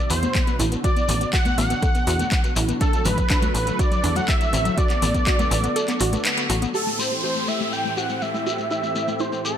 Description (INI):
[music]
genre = progressive house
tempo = 122 BPM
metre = 4/4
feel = straight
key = unclear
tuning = A4 = 440 Hz
[part]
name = wide unison lead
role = melody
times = 0.0-9.6 s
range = A4 to G5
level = -25 LUFS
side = right 1 dB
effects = dub echo
[part]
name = lush unison pad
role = sustained chords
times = 0.0-9.6 s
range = A2 to G4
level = -31 LUFS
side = left 1 dB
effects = chorus, sidechain pumping
[part]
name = analog pluck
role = arpeggios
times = 0.0-9.5 s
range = F#3 to B4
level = -28 LUFS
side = left 1 dB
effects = chorus, cassette tape, sidechain pumping, dub echo
[part]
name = tight sequencer bass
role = bass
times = 0.1-6.7 s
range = A1 to E2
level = -23 LUFS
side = equal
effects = sidechain pumping
[part]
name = house drum kit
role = drums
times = 0.1-9.5 s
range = crash cymbal, handclaps, hi-hat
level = -27 LUFS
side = equal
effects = overdrive, low-pass filter on hats, low-pass filter on snare, low-pass filter on cymbals, low-pass filter on room
[part]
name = shekere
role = percussion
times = 0.1-9.6 s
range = none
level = -32 LUFS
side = left 5 dB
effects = none
[part]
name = woodblock and congas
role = percussion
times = 0.1-6.6 s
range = none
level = -32 LUFS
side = right 1 dB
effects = none
[part]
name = electronic kick drum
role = drums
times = 0.3-5.4 s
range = none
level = -22 LUFS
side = equal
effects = none
[part]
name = downlifter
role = sound effects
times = 6.7-9.6 s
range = none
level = -29 LUFS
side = equal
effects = none
[sound]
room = light reverb, digital ambience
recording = none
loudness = -19 LUFS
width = side -9 dB against mid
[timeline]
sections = 0.0-6.7 A section; 6.7-9.6 B section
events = filter sweep on synth arpeggio sound 0.0-6.7, 6.7-9.6; filter sweep on analog synth pad 0.0-6.7; kick drops out 5.8-6.7; band accent 6.3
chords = 0.0 Bm/A; 6.7 Am7